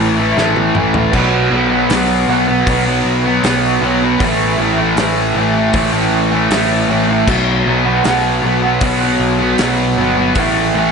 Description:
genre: rock, shoegaze and dream pop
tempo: 78 BPM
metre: 4/4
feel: straight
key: unclear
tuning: A4 = 441 Hz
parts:
  - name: fuzz guitar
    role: riff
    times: 0.0-10.9 s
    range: A2 to B3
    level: -13 LUFS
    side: equal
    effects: distortion, lush chorus
  - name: modern bright picked electric bass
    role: bass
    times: 0.0-10.9 s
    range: G1 to B1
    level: -20 LUFS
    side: equal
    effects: none
  - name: loose indie drum kit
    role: drums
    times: 0.4-10.5 s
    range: crash cymbal, hi-hat, kick drum, snare drum, toms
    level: -21 LUFS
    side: equal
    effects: none
room: moderate scoring stage reverb, RT60 1.6 s, small room ambience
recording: nothing above 10.9 kHz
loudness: -12 LUFS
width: side -5 dB against mid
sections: 0.0-10.9 A section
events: drum fill 0.4-1.1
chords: 0.0 A5; 1.1 B5; 4.2 A5; 7.3 B5; 10.4 A5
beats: 0.36 | 1.13 1.90 2.67 3.43 | 4.20 4.97 5.74 6.51 | 7.28 8.05 8.82 9.59 | 10.36

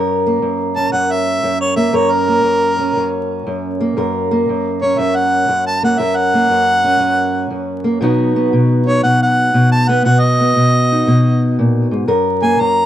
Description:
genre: acoustic country blues, solo or duo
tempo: 118 BPM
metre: 4/4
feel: swing 66% on 8ths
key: F# major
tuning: A4 = 440 Hz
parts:
  - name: fingerpicked steel-string acoustic guitar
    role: accompaniment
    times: 0.0-12.9 s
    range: F#2 to A#4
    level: -14 LUFS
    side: equal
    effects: none
  - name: mellow harmonica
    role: melody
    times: 0.8-12.9 s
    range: A#4 to A#5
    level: -15 LUFS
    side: equal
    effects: none
room: studio ambience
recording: dry, close 1970s-style studio recording, vinyl crackle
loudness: -12 LUFS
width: side -11 dB against mid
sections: 0.0-12.9 A section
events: none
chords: 0.0 F#; 8.0 B; 12.1 F#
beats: 0.42 0.93 1.44 | 1.94 2.45 2.96 3.46 | 3.97 4.48 4.98 5.49 | 6.00 6.50 7.01 7.51 | 8.02 8.53 9.03 9.54 | 10.05 10.55 11.06 11.56 | 12.07 12.58

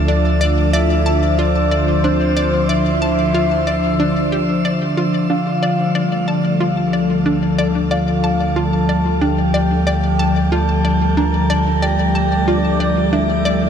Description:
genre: ambient, sequencer-driven space music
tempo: 92 BPM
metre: 4/4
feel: straight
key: D minor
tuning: A4 = 441 Hz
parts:
  - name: sweeping resonant pad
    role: sustained chords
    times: 0.0-13.7 s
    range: D3 to D5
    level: -17 LUFS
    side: left 1 dB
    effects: chorus
  - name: round analog bass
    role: bass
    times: 0.0-13.7 s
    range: D2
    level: -21 LUFS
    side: equal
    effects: none
  - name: wind-like tuned noise texture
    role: texture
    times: 0.0-13.7 s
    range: A3 to D5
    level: -31 LUFS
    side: equal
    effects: none
  - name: soft octave-layered synth lead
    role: melody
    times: 0.1-13.7 s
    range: C5 to Bb5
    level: -21 LUFS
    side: equal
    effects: chorus, ping-pong delay
  - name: hollow square pluck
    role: riff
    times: 0.1-13.7 s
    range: D4 to A5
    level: -22 LUFS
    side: equal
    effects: chorus, cassette tape, ping-pong delay
room: wet shimmer reverb, RT60 7.8 s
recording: none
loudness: -14 LUFS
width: side -8 dB against mid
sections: 0.0-13.7 A section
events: none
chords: 0.0 Dm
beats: | 0.08 0.74 1.39 2.04 | 2.69 3.35 4.00 4.65 | 5.30 5.95 6.61 7.26 | 7.91 8.56 9.21 9.87 | 10.52 11.17 11.82 12.47 | 13.13

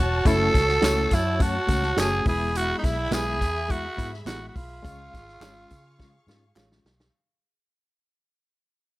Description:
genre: uptempo 1960s-style soul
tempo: 104 BPM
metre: 4/4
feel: straight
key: unclear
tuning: A4 = 440 Hz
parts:
  - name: growling tenor saxophone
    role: melody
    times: 0.0-6.6 s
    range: D#4 to A4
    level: -26 LUFS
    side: right 1 dB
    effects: none
  - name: clear studio string section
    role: second line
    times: 0.0-7.1 s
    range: F#4 to C#6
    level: -35 LUFS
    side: left 1 dB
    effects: none
  - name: vintage muted fingered electric bass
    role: bass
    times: 0.0-7.1 s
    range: E1 to C#3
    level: -29 LUFS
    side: equal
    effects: none
  - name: barky reed electric piano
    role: accompaniment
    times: 0.3-6.9 s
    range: G#3 to F#4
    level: -30 LUFS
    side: left 3 dB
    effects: overdrive, fast tremolo
  - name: vintage drum kit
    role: drums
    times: 0.3-7.1 s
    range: hi-hat, kick drum, snare drum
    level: -25 LUFS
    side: equal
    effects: none
  - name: tambourine and handclaps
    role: percussion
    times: 0.3-7.0 s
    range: none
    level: -37 LUFS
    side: equal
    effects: none
  - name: clean electric guitar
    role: stabs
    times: 0.8-6.7 s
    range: B3 to C#5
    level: -30 LUFS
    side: right 5 dB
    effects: none
room: little or no reverb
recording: none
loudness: -21 LUFS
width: side -18 dB against mid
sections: 0.0-7.1 A section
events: fade-out 0.0-7.1; drum fill 6.0-7.1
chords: 0.0 F#m; 2.3 E; 4.8 C#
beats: | 0.25 0.82 1.39 1.97 | 2.54 3.11 3.69 4.26 | 4.84 5.41 5.99 6.57

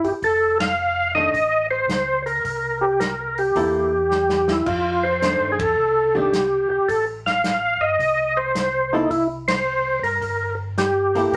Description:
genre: soul jazz organ trio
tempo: 108 BPM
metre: 4/4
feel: swing 67% on 8ths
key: unclear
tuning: A4 = 440 Hz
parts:
  - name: percussive tonewheel organ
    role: melody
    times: 0.0-11.4 s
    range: Eb4 to F5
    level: -21 LUFS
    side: equal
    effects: slow rotary speaker, overdrive, chorus vibrato
  - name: mellow tonewheel organ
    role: bass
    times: 0.0-11.4 s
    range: F1 to G2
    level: -35 LUFS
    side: equal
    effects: chorus vibrato, slow rotary speaker
  - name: warm soul drum kit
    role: drums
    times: 0.0-11.4 s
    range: crash cymbal, hi-hat, kick drum, ride cymbal, snare drum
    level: -32 LUFS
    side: equal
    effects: none
  - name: archtop guitar, miked and amplified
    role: accompaniment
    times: 1.1-11.3 s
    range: Eb3 to A4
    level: -28 LUFS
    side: equal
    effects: none
room: wet studio reverb, RT60 0.6 s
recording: none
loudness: -21 LUFS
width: mono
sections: 0.0-11.4 A section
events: band accent 0.5, 5.5, 9.4; drum fill 4.1-4.7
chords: 0.2 F; 2.4 C6; 4.7 F9; 9.1 C5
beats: | 0.22 0.78 1.33 1.89 | 2.44 3.00 3.55 4.11 | 4.66 5.22 5.77 6.33 | 6.88 7.44 7.99 8.55 | 9.10 9.66 10.21 10.77 | 11.32

